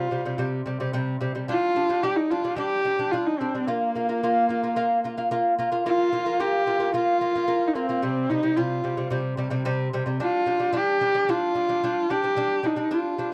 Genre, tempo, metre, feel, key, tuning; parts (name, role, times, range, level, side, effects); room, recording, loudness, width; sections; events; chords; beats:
mongolian traditional, Mongolian folk; 110 BPM; 4/4; straight; Bb zhi mode; A4 = 439 Hz
clear horsehead fiddle; melody; 0.0-13.3 s; Bb3 to G4; -26 LUFS; equal
lute; arpeggios; 0.0-13.3 s; C3 to F4; -29 LUFS; equal
little or no reverb; dry, close 1970s-style studio recording; -25 LUFS; mono
0.0-5.9 A section; 5.9-13.3 A section
0.0 C5; 1.5 G5; 3.7 Bb5; 8.0 C5; 10.2 G5
0.39 0.94 | 1.48 2.03 2.58 3.13 | 3.67 4.22 4.77 5.31 | 5.86 6.41 6.95 7.50 | 8.04 8.58 9.13 9.67 | 10.21 10.76 11.30 11.84 | 12.38 12.93